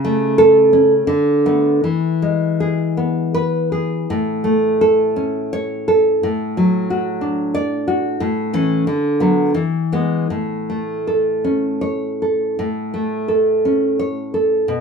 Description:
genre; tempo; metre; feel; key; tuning
romantic piece for solo classical guitar; 76-92 BPM; 3/4; rubato; A major; A4 = 436 Hz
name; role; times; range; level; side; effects
nylon-string guitar; solo; 0.0-14.8 s; A2 to D5; -15 LUFS; equal; none
room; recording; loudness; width
wet studio reverb, RT60 0.6 s; none; -15 LUFS; side -6 dB against mid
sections
0.0-12.6 A section; 12.6-14.8 B section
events
none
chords
0.0 A/C#; 1.1 Bm7/D; 1.8 E; 4.1 A; 6.2 D/A; 8.2 A; 8.9 Bm/D; 9.6 E; 10.3 A

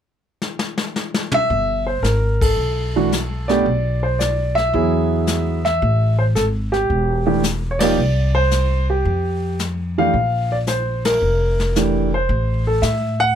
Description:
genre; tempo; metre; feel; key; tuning
jazz piano trio; 111 BPM; 4/4; swing 69% on 8ths; unclear; A4 = 439 Hz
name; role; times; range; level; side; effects
jazz brush drum kit; drums; 0.4-13.4 s; brushed snare drum, hi-hat, kick drum, ride cymbal, snare drum, toms; -25 LUFS; left 3 dB; none
warm grand piano; melody; 1.3-13.4 s; E3 to F#5; -19 LUFS; right 1 dB; none
upright bass; bass; 1.5-13.3 s; E1 to A2; -20 LUFS; equal; none
room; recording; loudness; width
little or no reverb; close, detailed microphones; -16 LUFS; side -9 dB against mid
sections
0.0-1.5 A section; 1.5-13.4 B section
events
drum fill 0.4-1.5; band accent 2.3, 7.7, 10.9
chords
0.0 N.C.; 1.5 Gadd9; 3.7 Bm; 4.7 E; 5.8 A7(no3); 8.0 Csus2; 9.1 Fsus2; 10.1 Bb5; 12.3 Am

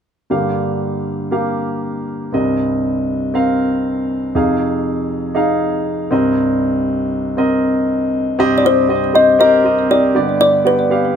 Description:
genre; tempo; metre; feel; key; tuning
pop; 119 BPM; 4/4; straight; C minor; A4 = 440 Hz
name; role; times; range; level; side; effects
warm grand piano; accompaniment; 0.3-11.2 s; C2 to F5; -15 LUFS; right 1 dB; none
kalimba; melody; 8.6-11.2 s; B4 to Eb5; -12 LUFS; left 2 dB; none
room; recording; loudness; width
moderate studio reverb, RT60 0.8 s; none; -14 LUFS; side -8 dB against mid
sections
0.3-8.4 A section; 8.4-11.2 B section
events
none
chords
0.3 Gm7; 2.3 Cm7; 4.3 Fm7; 6.1 Cm7; 10.1 G

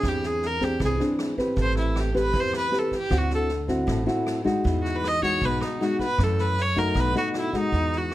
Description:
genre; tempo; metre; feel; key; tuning
bossa nova; 156 BPM; 4/4; straight; E major; A4 = 440 Hz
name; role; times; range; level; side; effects
clear viola; melody; 0.0-8.1 s; D#4 to D#5; -26 LUFS; equal; none
nylon-string guitar; accompaniment; 0.0-8.1 s; F#2 to B4; -26 LUFS; left 1 dB; none
upright bass; bass; 0.0-8.1 s; A1 to F#2; -27 LUFS; right 1 dB; none
swinging big-band drum kit; drums; 0.0-8.1 s; kick drum, rim click, snare drum; -33 LUFS; right 1 dB; none
room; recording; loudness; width
light reverb; none; -22 LUFS; side -15 dB against mid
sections
0.0-7.7 A section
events
viola solo 0.0-7.7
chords
0.0 E7alt; 1.6 Am9; 3.1 D9; 4.6 Emaj9; 6.2 F#m7; 7.0 B7

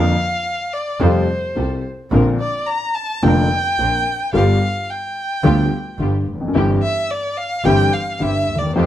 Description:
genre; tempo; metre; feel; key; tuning
tango; 108 BPM; 4/4; rubato; Bb major; A4 = 440 Hz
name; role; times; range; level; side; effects
warm violin; second line; 0.0-8.9 s; C5 to Bb5; -21 LUFS; equal; none
warm grand piano; accompaniment; 0.0-8.9 s; F1 to G4; -18 LUFS; left 2 dB; none
muted studio string section; stabs; 0.0-8.9 s; A3 to Bb4; -26 LUFS; right 1 dB; none
bright double bass; bass; 0.0-8.9 s; F1 to F2; -20 LUFS; right 2 dB; none
room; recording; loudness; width
light reverb; close, detailed microphones; -16 LUFS; side -12 dB against mid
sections
0.0-8.9 A section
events
violin solo 0.0-8.9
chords
0.0 Bb/F; 1.0 Fadd9; 2.1 Bbadd9; 4.3 G7; 6.5 C/G

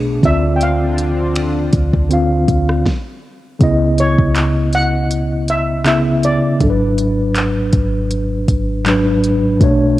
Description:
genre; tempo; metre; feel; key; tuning
contemporary R&B; 80 BPM; 4/4; swing 54% on 16ths; unclear; A4 = 440 Hz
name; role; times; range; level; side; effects
steel pan; melody; 0.0-8.4 s; C#5 to G5; -20 LUFS; equal; cassette tape, analog delay
mellow tine electric piano; accompaniment; 0.0-10.0 s; G#2 to F5; -15 LUFS; equal; medium stereo tremolo, cassette tape
chorused pulse-width pad; sustained chords; 0.0-2.8 s; D3 to F4; -25 LUFS; left 2 dB; cassette tape
clean 808-style bass; bass; 0.0-10.0 s; G#1 to D2; -19 LUFS; equal; none
smooth R&B drum kit; drums; 0.2-9.8 s; finger snaps, handclaps, hi-hat, kick drum, rim click, snare drum; -19 LUFS; equal; cassette tape
room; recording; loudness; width
digital ambience; home recording on cassette; -13 LUFS; side -15 dB against mid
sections
0.0-3.6 A section; 3.6-10.0 B section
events
stop 2.9-3.6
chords
0.2 Dm7; 3.6 C#m9; 6.6 G#m7b5

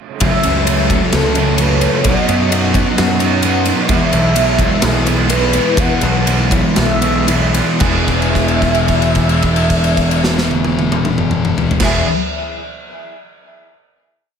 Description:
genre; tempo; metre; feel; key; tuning
rock, shoegaze and dream pop; 111-131 BPM; 4/4; straight; E major; A4 = 440 Hz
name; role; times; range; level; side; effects
mellow horn-like synth lead; melody; 0.2-12.0 s; G#4 to F#5; -21 LUFS; equal; chorus, phaser, diffuse ambient delay
fingerpicked twelve-string acoustic guitar; arpeggios; 0.2-12.1 s; E3 to G#4; -25 LUFS; left 6 dB; analog chorus, diffuse ambient delay
overdriven semi-hollow guitar; riff; 0.2-12.1 s; F#2 to E4; -19 LUFS; right 9 dB; reverse reverb
thick fuzz guitar; riff; 0.2-12.1 s; E2 to B3; -19 LUFS; left 7 dB; distortion, analog chorus
fuzz picked electric bass; bass; 0.2-12.0 s; E1 to F#2; -18 LUFS; equal; overdrive
big rock drum kit; drums; 0.2-11.9 s; crash cymbal, kick drum, ride cymbal, snare drum, toms; -19 LUFS; equal; none
room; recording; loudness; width
moderate plate reverb, RT60 2.0 s; dreamy mix soaked in reverb; -12 LUFS; side -7 dB against mid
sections
0.2-7.8 verse; 7.8-12.1 final chord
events
slowing down 3.9-7.8; held note 7.8-11.8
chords
0.2 F#m7; 2.1 B; 3.9 E

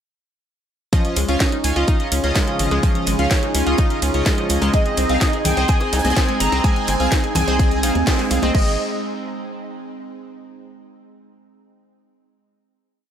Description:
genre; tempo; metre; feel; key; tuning
progressive house; 126 BPM; 4/4; straight; Ab major; A4 = 439 Hz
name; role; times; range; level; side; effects
evolving wavetable pad; sustained chords; 1.7-8.8 s; Db3 to Ab4; -27 LUFS; right 2 dB; phaser, built-in reverb, sidechain pumping
analog pluck; arpeggios; 0.9-8.8 s; F3 to C5; -25 LUFS; equal; chorus, sidechain pumping, tape echo
chorused polysynth; stabs; 0.9-8.7 s; C4 to Ab5; -24 LUFS; left 1 dB; sidechain pumping, tape echo
deep reggae drum kit; drums; 0.9-8.5 s; hi-hat, snare drum; -34 LUFS; right 3 dB; none
electronic kick drum; drums; 0.9-8.6 s; none; -18 LUFS; equal; none
house drum kit; drums; 0.9-8.6 s; crash cymbal, hi-hat, ride cymbal, snare drum; -25 LUFS; equal; none
round analog bass; bass; 1.2-8.8 s; G1 to Eb2; -22 LUFS; equal; sidechain pumping
soft supersaw; melody; 4.7-8.8 s; Eb5 to Bb5; -24 LUFS; right 1 dB; tape echo
glassy wavetable pluck; second line; 4.7-8.8 s; Eb5 to Bb5; -32 LUFS; right 2 dB; none
congas and bongos; percussion; 5.4-8.5 s; none; -28 LUFS; left 2 dB; sidechain pumping on perc
room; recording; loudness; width
light reverb, digital ambience; none; -16 LUFS; side -9 dB against mid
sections
0.9-8.5 drop; 8.5-10.5 final chord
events
drop 0.9-8.5; band accent 8.1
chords
0.9 Dbadd9; 4.7 Ab

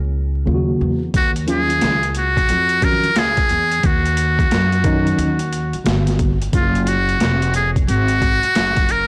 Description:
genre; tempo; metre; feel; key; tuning
hip hop, jazz-hop; 89 BPM; 4/4; swing 64% on 16ths; unclear; A4 = 440 Hz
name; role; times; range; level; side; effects
upright bass; bass; 0.0-9.1 s; F1 to Gb2; -23 LUFS; equal; tube saturation
mellow tine electric piano; accompaniment; 0.5-7.0 s; Db3 to Gb4; -24 LUFS; equal; none
boom bap sampler-style drum kit; drums; 1.1-9.1 s; hi-hat, kick drum, snare drum; -23 LUFS; equal; overdrive
trumpet with metal mute; melody; 1.2-9.1 s; F4 to Bb4; -20 LUFS; equal; none
room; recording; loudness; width
light reverb, digital ambience; blown-out, overdriven recording, vinyl crackle, overdrive; -17 LUFS; mono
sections
0.0-9.1 A section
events
none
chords
0.0 Gb; 1.1 Ebm9; 5.9 Gmaj7; 6.5 Gbmaj7

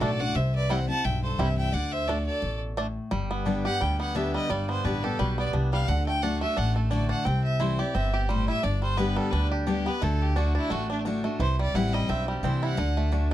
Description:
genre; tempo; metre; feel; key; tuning
bluegrass; 174 BPM; 4/4; swing 55% on 8ths; unclear; A4 = 439 Hz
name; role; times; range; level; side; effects
clear fiddle; melody; 0.0-13.1 s; D4 to A5; -31 LUFS; right 1 dB; none
clear fiddle; second line; 0.0-2.6 s; A4 to F#5; -37 LUFS; left 5 dB; none
picked steel-string acoustic guitar; accompaniment; 0.0-13.3 s; G2 to G4; -30 LUFS; left 3 dB; none
bluegrass banjo; arpeggios; 0.0-13.3 s; D3 to G4; -32 LUFS; right 3 dB; none
upright bass; bass; 0.0-13.3 s; G1 to D2; -27 LUFS; equal; none
room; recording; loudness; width
little or no reverb; close, detailed microphones; -24 LUFS; side -13 dB against mid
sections
0.0-3.1 A section; 3.1-13.3 B section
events
none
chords
0.4 C; 1.7 D; 3.1 G; 5.9 D; 7.3 C; 8.6 G; 10.0 D; 11.4 C; 12.8 D

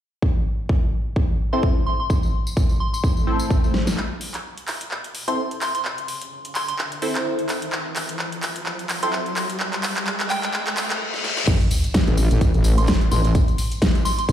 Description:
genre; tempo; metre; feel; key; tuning
bass house; 128 BPM; 4/4; swing 56% on 16ths; A minor; A4 = 440 Hz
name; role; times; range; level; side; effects
electronic kick drum; drums; 0.2-3.6, 11.5-14.3 s; none; -19 LUFS; equal; none
soft synth bell; melody; 1.5-14.2 s; G5 to C6; -28 LUFS; equal; chorus, phaser, ping-pong delay
band-passed chord stab; stabs; 1.5-9.2 s; C4 to C5; -27 LUFS; equal; phaser, analog chorus, sidechain pumping, ping-pong delay
tambourine; percussion; 2.1-4.0, 11.5-14.3 s; none; -35 LUFS; left 2 dB; none
swell, riser, reverse cymbal and sub drop; sound effects; 3.1-13.3 s; none; -29 LUFS; equal; none
big-room dance drum kit; drums; 3.7-14.3 s; crash cymbal, handclaps, hi-hat, snare drum; -25 LUFS; equal; high-pass filter on snare, high-pass filter on hats, high-pass filter on cymbals, high-pass filter on room
wobble bass; bass; 11.5-14.3 s; A1; -18 LUFS; equal; chorus, overdrive, sidechain pumping
room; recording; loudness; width
light reverb, digital ambience; played on a big sound system in a bare room, large studio reverb, high-pass filter; -20 LUFS; side -10 dB against mid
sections
0.2-4.0 A section; 4.0-11.5 B section; 11.5-14.3 C section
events
swell 3.1-4.0; drum fill 3.7, 4.0-11.0, 11.1-11.5; build-up 4.0-11.5; riser 4.0-11.0; filter sweep on synth stab 4.0-11.5; filter sweep 4.0-11.5; reverse cymbal 10.5-11.5; drop 11.5-14.3; impact 11.5-13.3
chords
0.2 Am; 11.5 N.C.

